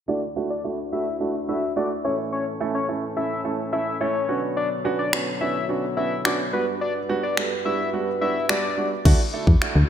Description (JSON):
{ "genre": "dance-pop", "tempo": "107 BPM", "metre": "4/4", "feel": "straight", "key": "D major", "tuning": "A4 = 440 Hz", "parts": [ { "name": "fat analog lead", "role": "melody", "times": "0.1-8.9 s", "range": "B4 to E5", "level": "-27 LUFS", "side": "left 4 dB", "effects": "sidechain pumping, low-pass filter, digital delay" }, { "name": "dark baby grand piano", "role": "accompaniment", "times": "0.1-9.8 s", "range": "G3 to A4", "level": "-27 LUFS", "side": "right 5 dB", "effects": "sidechain pumping, low-pass filter" }, { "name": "warm French horn section", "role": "sustained chords", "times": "0.1-9.9 s", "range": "D2 to C#5", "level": "-31 LUFS", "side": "left 1 dB", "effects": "sidechain pumping, low-pass filter" }, { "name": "pop drum kit", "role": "drums", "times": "5.1-9.7 s", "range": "crash cymbal, finger snaps, kick drum", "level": "-22 LUFS", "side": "equal", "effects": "gated reverb" }, { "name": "solid FM bass", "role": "bass", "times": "9.1-9.8 s", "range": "D2 to E2", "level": "-16 LUFS", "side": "equal", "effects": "sidechain pumping" } ], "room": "moderate plate reverb, RT60 2.1 s", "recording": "bright 1980s-style digital production", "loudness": "-21 LUFS", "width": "side -9 dB against mid", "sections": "0.1-9.1 A section", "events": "filter sweep 0.1-9.1", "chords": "0.1 Dadd9; 2.0 A; 4.3 Bmadd9; 6.5 Gmaj7; 9.1 Dadd9" }